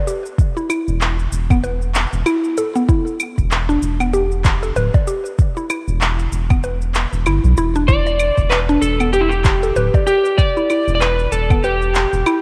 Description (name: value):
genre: organic downtempo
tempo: 96 BPM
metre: 4/4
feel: swing 58% on 16ths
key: E minor pentatonic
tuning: A4 = 439 Hz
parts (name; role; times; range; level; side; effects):
- mallet-like synth pluck; arpeggios; 0.0-12.4 s; B3 to D5; -23 LUFS; equal; chorus, phaser, delay
- electronic shaker, claves and handclaps; drums; 0.1-12.4 s; none; -26 LUFS; equal; none
- electronic kick drum; drums; 0.4-11.6 s; none; -18 LUFS; equal; none
- round analog bass; bass; 0.9-12.2 s; D1 to B1; -22 LUFS; equal; none
- electric slide guitar; melody; 7.9-12.4 s; E4 to D5; -20 LUFS; equal; delay
room: moderate lush hall reverb, RT60 2.9 s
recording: worn, warbling old tape, cassette tape, warbly pitch drift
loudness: -17 LUFS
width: mono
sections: 0.0-12.4 A section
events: none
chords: 0.0 E7(no3)